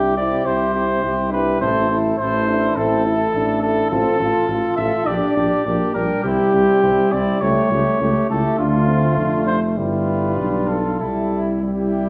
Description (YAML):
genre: classical, brass quintet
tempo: 103 BPM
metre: 4/4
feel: rubato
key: unclear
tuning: A4 = 440 Hz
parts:
  - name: mellow trumpet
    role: melody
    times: 0.0-12.1 s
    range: F4 to E5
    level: -23 LUFS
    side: equal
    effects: none
  - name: warm trumpet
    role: second line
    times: 0.0-12.1 s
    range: E4 to A4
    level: -30 LUFS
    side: equal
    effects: none
  - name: clear French horn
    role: accompaniment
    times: 0.0-12.1 s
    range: G3 to F4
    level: -26 LUFS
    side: equal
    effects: none
  - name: mellow trombone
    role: accompaniment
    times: 0.0-12.1 s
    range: G3 to F4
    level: -26 LUFS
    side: equal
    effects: none
  - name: mellow tuba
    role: bass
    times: 0.0-12.1 s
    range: F1 to D2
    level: -25 LUFS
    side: equal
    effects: none
room: wet recital hall reverb, RT60 1.5 s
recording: small room ambience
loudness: -19 LUFS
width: mono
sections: 0.0-12.1 A section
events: none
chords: 0.0 C; 1.6 Am; 3.9 F/A; 5.1 Gm/Bb; 6.2 C; 7.4 A7/C#; 8.6 Dm; 9.8 G7; 11.0 C